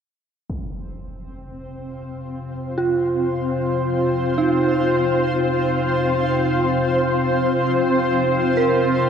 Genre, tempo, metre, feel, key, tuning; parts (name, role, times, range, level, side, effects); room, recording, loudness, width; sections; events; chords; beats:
dark ambient drone; free time; A4 = 440 Hz
granular cloud pad; sustained chords; 1.6-9.1 s; C4 to C5; -19 LUFS; left 1 dB; built-in reverb
deep rumbling drone; drone; 1.3-9.1 s; F2 to C3; -27 LUFS; left 1 dB; built-in reverb
impact; percussion; 0.5-0.8 s; -35 LUFS; equal; low-pass filter on sfx
dark detuned synth bell; arpeggios; 2.8-9.1 s; Eb4 to Bb4; -24 LUFS; right 3 dB; chorus, phaser, diffuse ambient delay
wet cathedral reverb, RT60 5.7 s; in a vast, echoing space; -17 LUFS; side -7 dB against mid
0.5-9.1 A section
filter sweep on synth drone 0.5-9.1
0.5 F5
free time